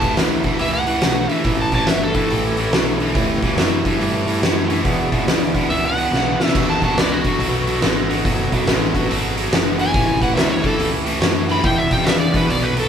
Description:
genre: blues rock power trio and southern rock.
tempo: 141 BPM.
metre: 4/4.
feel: swing 64% on 8ths.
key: unclear.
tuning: A4 = 440 Hz.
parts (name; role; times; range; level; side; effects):
overdriven slide guitar; melody; 0.0-12.9 s; F#4 to B5; -22 LUFS; right 1 dB; none.
bright tonewheel organ; sustained chords; 0.0-12.9 s; A3 to D#5; -28 LUFS; right 2 dB; none.
cranked stack guitar; riff; 0.0-12.9 s; E2 to G#3; -22 LUFS; equal; overdrive.
growling picked electric bass; bass; 0.0-12.9 s; F#1 to G2; -25 LUFS; equal; overdrive.
oversized low-tuned drum kit; drums; 0.0-12.8 s; crash cymbal, hi-hat, kick drum, snare drum; -19 LUFS; equal; none.
room: moderate studio ambience, RT60 0.5 s.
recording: band playing live in one room.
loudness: -15 LUFS.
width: side -8 dB against mid.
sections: 0.0-12.9 A section.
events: electric slide guitar solo 0.0-12.9; drum fill 6.1-6.5.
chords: 0.0 A7; 4.8 E7; 6.5 B7; 9.9 A7; 11.6 E7.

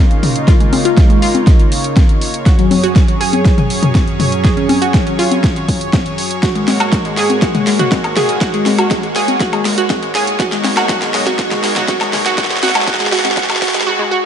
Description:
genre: progressive house.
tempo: 121 BPM.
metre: 4/4.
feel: straight.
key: Db mixolydian.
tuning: A4 = 439 Hz.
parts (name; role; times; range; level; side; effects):
lush unison pad; sustained chords; 0.0-13.8 s; Gb2 to Db5; -20 LUFS; equal; chorus, sidechain pumping.
analog pluck; arpeggios; 0.0-14.2 s; Gb3 to Bb4; -16 LUFS; right 1 dB; chorus, cassette tape, sidechain pumping, ping-pong delay.
deep house drum kit; drums; 0.1-14.1 s; hi-hat, snare drum, toms, woodblock; -19 LUFS; equal; overdrive, high-pass filter on perc, high-pass filter on snare, high-pass filter on hats, high-pass filter on toms.
electronic toms and congas; percussion; 0.2-13.3 s; none; -19 LUFS; left 4 dB; overdrive, sidechain pumping on perc, sidechain pumping on toms.
electronic kick drum; drums; 0.5-13.7 s; none; -12 LUFS; equal; overdrive.
room: moderate lush hall reverb, RT60 2.1 s.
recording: dark, warm production, high-pass filter, nothing above 10.6 kHz.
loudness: -11 LUFS.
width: side -9 dB against mid.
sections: 0.0-14.3 A section.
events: build-up 0.0-14.3; drum fill 0.0-13.9, 13.9-14.3; filter sweep 0.0-14.3.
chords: 0.0 Db6; 2.5 Gbsus2; 6.4 Ab7sus4; 10.4 Cbmaj7.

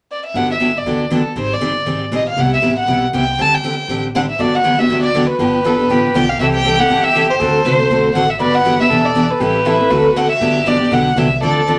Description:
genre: acoustic string swing (jazz manouche).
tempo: 238 BPM.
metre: 4/4.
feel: swing 55% on 8ths.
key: G major.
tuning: A4 = 440 Hz.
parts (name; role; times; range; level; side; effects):
warm violin; melody; 0.1-11.7 s; A4 to A5; -19 LUFS; equal; none.
upright bass; bass; 0.3-11.8 s; E1 to D2; -27 LUFS; equal; none.
picked steel-string acoustic guitar; accompaniment; 0.4-11.8 s; C3 to A4; -19 LUFS; equal; none.
growling soprano saxophone; second line; 4.4-11.8 s; E4 to C5; -22 LUFS; equal; none.
room: wet studio reverb, RT60 0.5 s.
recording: none.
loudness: -15 LUFS.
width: mono.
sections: 0.3-4.4 A section; 4.4-11.8 B section.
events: none.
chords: 0.3 Gmaj9; 1.4 Abmaj9#11; 2.4 Cmaj7; 3.4 D7sus4; 4.4 Gmaj7; 5.4 G9; 6.4 C6; 7.4 D7; 8.4 Gmaj7; 8.9 Em7; 9.4 Am9; 9.9 D6; 10.4 Gmaj7.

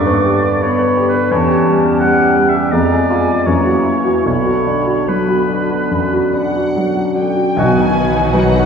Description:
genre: classical, romantic movement for piano and orchestra.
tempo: 66-86 BPM.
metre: 4/4.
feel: rubato.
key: B minor.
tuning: A4 = 444 Hz.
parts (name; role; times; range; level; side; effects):
clear baby grand piano; melody; 0.0-8.7 s; B1 to B4; -14 LUFS; left 1 dB; none.
large flute ensemble; second line; 0.0-8.7 s; F#5 to C#6; -24 LUFS; right 1 dB; none.
warm clarinet; second line; 0.0-7.9 s; A#3 to F#4; -24 LUFS; right 1 dB; none.
warm oboe; second line; 0.0-7.9 s; B4 to F#5; -20 LUFS; equal; none.
dark bassoon; accompaniment; 0.0-7.9 s; D3 to D#4; -22 LUFS; right 2 dB; none.
muted studio violin section; melody; 6.4-8.7 s; F#5 to G#5; -25 LUFS; left 4 dB; none.
muted studio violin section; second line; 7.6-8.7 s; F#4 to B4; -24 LUFS; left 1 dB; none.
muted studio viola section; accompaniment; 7.6-8.7 s; D#3 to D#4; -23 LUFS; equal; none.
mellow French horn section; sustained chords; 7.6-8.7 s; F#3 to D#4; -21 LUFS; left 1 dB; none.
muted studio cello section; bass; 7.6-8.7 s; B2; -23 LUFS; right 2 dB; none.
muted studio double bass section; bass; 7.6-8.7 s; B1; -20 LUFS; right 1 dB; none.
timpani; percussion; 7.6-8.7 s; B2; -23 LUFS; left 2 dB; none.
room: wet concert hall reverb, RT60 2.2 s.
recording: heard from further back in the room.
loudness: -12 LUFS.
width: side -6 dB against mid.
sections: 0.0-7.6 A section; 7.6-8.7 B section.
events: none.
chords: 0.0 G; 1.3 C#dim/E; 2.7 Fdim7; 3.5 F#7; 4.2 Bm; 7.6 B.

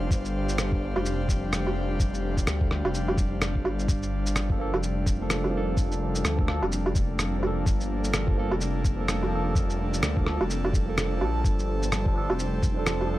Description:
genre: future garage.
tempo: 127 BPM.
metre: 4/4.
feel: swing 60% on 16ths.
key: G minor.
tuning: A4 = 438 Hz.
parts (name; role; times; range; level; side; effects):
airy breathy pad; sustained chords; 0.0-13.2 s; G3 to F5; -32 LUFS; equal; chorus, sidechain pumping.
swelling detuned saw bass; bass; 0.0-13.2 s; F1 to D2; -29 LUFS; equal; tube saturation, sidechain pumping.
electronic kick drum; drums; 0.1-12.7 s; none; -26 LUFS; equal; none.
electronic shaker, rim click and woodblock; drums; 0.1-13.1 s; none; -29 LUFS; right 1 dB; none.
barky tine electric piano; accompaniment; 4.5-13.2 s; F3 to A4; -33 LUFS; right 3 dB; phaser, sidechain pumping, tape echo.
room: light reverb.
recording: dry, gritty hardware recording.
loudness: -24 LUFS.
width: side -15 dB against mid.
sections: 0.0-13.2 A section.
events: none.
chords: 0.0 F5; 3.9 Gm9; 11.4 F6.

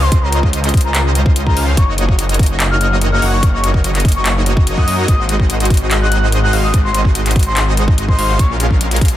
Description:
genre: future bass.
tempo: 145 BPM.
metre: 4/4.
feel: half-time.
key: unclear.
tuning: A4 = 440 Hz.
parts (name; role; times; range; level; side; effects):
soft octave-layered synth lead; melody; 0.0-8.5 s; Bb5 to Gb6; -22 LUFS; left 2 dB; chorus, tremolo, sidechain pumping, digital delay.
shimmering ambient pad; sustained chords; 0.0-9.2 s; C3 to C5; -27 LUFS; left 1 dB; chorus, built-in reverb, sidechain pumping.
supersaw chords; riff; 0.0-9.2 s; Ab3 to Gb5; -20 LUFS; right 1 dB; vintage 12-bit sampler grit, sidechain pumping.
wide detuned saw bass; bass; 0.0-9.2 s; Gb1 to Gb2; -16 LUFS; equal; chorus, sidechain pumping.
electronic kick drum; drums; 0.1-9.1 s; none; -13 LUFS; equal; none.
trap drum kit; drums; 0.1-9.2 s; handclaps, hi-hat; -21 LUFS; left 1 dB; none.
room: digital ambience.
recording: dense, heavily limited modern master.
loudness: -11 LUFS.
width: side -13 dB against mid.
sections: 0.0-9.2 A section.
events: none.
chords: 0.0 Dbmaj9; 1.8 Gb6; 5.1 Ab7; 8.4 Bbm7.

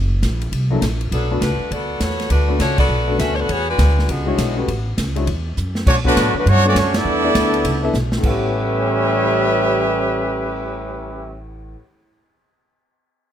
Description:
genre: jazz, big band swing.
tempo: 202 BPM.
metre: 4/4.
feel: swing 62% on 8ths.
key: A mixolydian.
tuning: A4 = 435 Hz.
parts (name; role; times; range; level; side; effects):
upright bass; bass; 0.0-11.7 s; F#1 to B2; -20 LUFS; equal; none.
swinging big-band drum kit; drums; 0.2-10.5 s; crash cymbal, cymbal swell, hi-hat, kick drum, ride cymbal, snare drum; -24 LUFS; equal; none.
clear concert grand piano; accompaniment; 0.7-11.8 s; A2 to F#5; -24 LUFS; left 4 dB; none.
bright saxophone section; melody; 1.1-5.0 s; D3 to E5; -22 LUFS; left 2 dB; none.
clear trumpet section; melody; 5.9-11.4 s; A3 to E5; -19 LUFS; equal; none.
warm trombone section; second line; 5.9-11.4 s; A2 to D4; -22 LUFS; right 2 dB; none.
room: light reverb.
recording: close, detailed microphones.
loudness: -16 LUFS.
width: side -10 dB against mid.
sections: 0.0-5.9 A section; 5.9-8.2 B section; 8.2-10.6 C section.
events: band accent 2.8, 6.9; drum fill 5.6, 7.9.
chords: 0.0 F#; 1.1 Bm7; 3.5 E13; 4.7 A69; 5.3 Esus2; 5.9 Bm9; 7.1 E7sus4; 8.2 A13.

